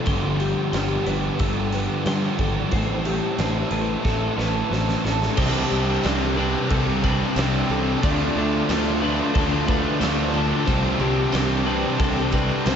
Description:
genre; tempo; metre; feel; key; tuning
rock, shoegaze and dream pop; 91 BPM; 4/4; straight; C major; A4 = 440 Hz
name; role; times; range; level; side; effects
clean electric guitar; arpeggios; 0.0-12.8 s; G4 to C6; -30 LUFS; left 5 dB; ensemble chorus, analog delay
crunchy overdriven guitar; riff; 0.0-12.8 s; G2 to A4; -26 LUFS; right 7 dB; reverse reverb
thick fuzz guitar; riff; 0.0-12.8 s; G2 to D4; -26 LUFS; left 6 dB; distortion, ensemble chorus
overdriven picked electric bass; bass; 0.1-12.8 s; G1 to G2; -26 LUFS; equal; none
big rock drum kit; drums; 0.1-12.8 s; crash cymbal, hi-hat, kick drum, snare drum; -27 LUFS; equal; none
distorted electric guitar; riff; 5.4-12.8 s; C3 to D4; -27 LUFS; equal; overdrive
tambourine; percussion; 5.4-12.8 s; none; -42 LUFS; right 12 dB; none
room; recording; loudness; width
moderate huge ambient reverb, RT60 5.0 s; dreamy mix soaked in reverb, nothing above 7.6 kHz; -19 LUFS; side -8 dB against mid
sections
0.0-5.4 A section; 5.4-12.8 B section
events
drum fill 4.1-5.4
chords
0.1 G7sus4; 2.7 Am7; 5.4 Csus2; 8.0 Dm; 10.7 Csus2

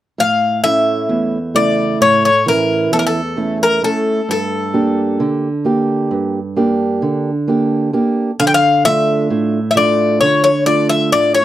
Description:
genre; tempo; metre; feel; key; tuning
greek folk; 132 BPM (eighths); 9/8; straight; A phrygian dominant; A4 = 440 Hz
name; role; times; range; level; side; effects
Greek bouzouki; melody; 0.2-11.4 s; A4 to G5; -14 LUFS; left 3 dB; none
fingerpicked acoustic archtop guitar; accompaniment; 0.2-11.4 s; E2 to G4; -16 LUFS; right 2 dB; none
room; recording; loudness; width
light reverb; dry, close 1970s-style studio recording; -13 LUFS; side -13 dB against mid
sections
0.2-11.4 A section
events
none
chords
0.2 A; 4.3 Gm; 8.4 Dm

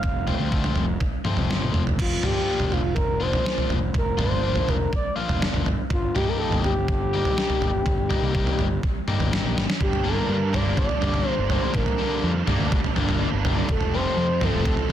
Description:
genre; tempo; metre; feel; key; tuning
indie rock; 123 BPM; 4/4; straight; G minor; A4 = 439 Hz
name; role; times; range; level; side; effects
expressive synth lead; melody; 0.0-14.9 s; F4 to F5; -27 LUFS; equal; chorus, plate reverb, digital delay
fuzz picked electric bass; bass; 0.0-14.9 s; F1 to G2; -27 LUFS; equal; overdrive
detuned 8-bit digital drum machine; drums; 0.0-14.9 s; crash cymbal, kick drum, snare drum, toms; -24 LUFS; right 1 dB; none
crunchy overdriven guitar; riff; 0.3-14.9 s; C3 to G4; -28 LUFS; left 7 dB; none
fuzz guitar; riff; 9.8-14.9 s; F2 to D4; -30 LUFS; right 8 dB; distortion, ensemble chorus, digital delay
room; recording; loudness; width
light reverb; dense, heavily limited modern master; -21 LUFS; side -11 dB against mid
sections
0.0-9.8 A section; 9.8-14.9 B section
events
drum fill 1.5-2.0, 9.6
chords
0.0 F; 2.0 Bb/F; 5.7 Eb/G; 9.8 Gm; 13.7 F

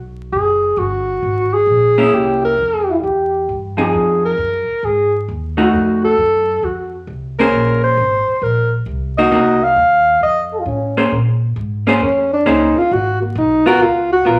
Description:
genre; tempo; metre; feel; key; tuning
jazz, small-group swing and bop; 133 BPM; 4/4; swing 68% on 8ths; Bb minor; A4 = 440 Hz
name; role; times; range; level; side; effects
upright bass; bass; 0.0-14.4 s; Gb1 to Bb2; -25 LUFS; equal; none
dark alto saxophone; melody; 0.3-14.4 s; Bb3 to F5; -17 LUFS; equal; none
vintage hollow-body jazz guitar; accompaniment; 2.0-14.4 s; F3 to C5; -18 LUFS; equal; none
breathy trombone; second line; 2.9-3.6, 10.5-11.1 s; Db4 to A4; -21 LUFS; equal; none
room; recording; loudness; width
moderate large studio reverb, RT60 0.8 s; vinyl crackle; -15 LUFS; mono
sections
0.0-11.1 A section; 11.1-14.4 B section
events
none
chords
0.3 Gbadd9; 2.1 C7b9; 3.9 Fm7; 5.7 F7b9; 7.5 Bbm9; 9.3 Cm7b5; 10.2 F; 11.1 Bbm9; 12.9 Abm; 13.8 Db6

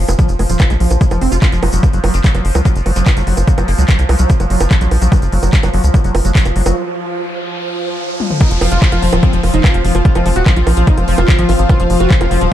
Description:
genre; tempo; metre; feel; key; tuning
psychedelic trance; 146 BPM; 4/4; straight; unclear; A4 = 440 Hz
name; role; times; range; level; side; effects
bubbling stepped-filter texture; sustained chords; 0.0-12.5 s; F3; -22 LUFS; equal; chorus, built-in reverb, sidechain pumping
tight sequencer bass; bass; 0.0-12.5 s; Eb1 to Db2; -14 LUFS; equal; none
liquid acid bass; riff; 0.1-12.5 s; F3 to F4; -22 LUFS; moving between left 6 dB and right 4 dB; chorus, auto-pan, sidechain pumping, tape echo
drum and bass drum kit; drums; 0.1-12.5 s; bongos, crash cymbal, handclaps, hi-hat, toms; -21 LUFS; right 2 dB; studio reverb
tube shaker; percussion; 0.1-6.7 s; none; -30 LUFS; right 1 dB; none
electronic kick drum; drums; 0.2-12.2 s; none; -12 LUFS; equal; overdrive, studio reverb
resonant blip pluck; second line; 2.1-4.1, 8.7-10.5 s; Bb3 to F4; -32 LUFS; left 3 dB; none
riser and downlifter; sound effects; 6.1-11.7 s; none; -27 LUFS; equal; none
overdriven synth lead; melody; 8.4-12.5 s; F3 to Gb4; -20 LUFS; left 1 dB; distortion, phaser, vintage 12-bit sampler grit, sidechain pumping, tape echo
rich studio string section; texture; 8.4-12.5 s; C4 to F5; -23 LUFS; right 1 dB; sidechain pumping
room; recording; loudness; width
digital ambience; dark, warm production; -11 LUFS; side -12 dB against mid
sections
0.0-8.4 A section; 8.4-12.5 B section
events
riser 6.1-8.4; break 6.8-8.4; drum fill 8.2; drop 8.4-12.5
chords
0.0 F5; 1.8 Gb5; 8.4 F5

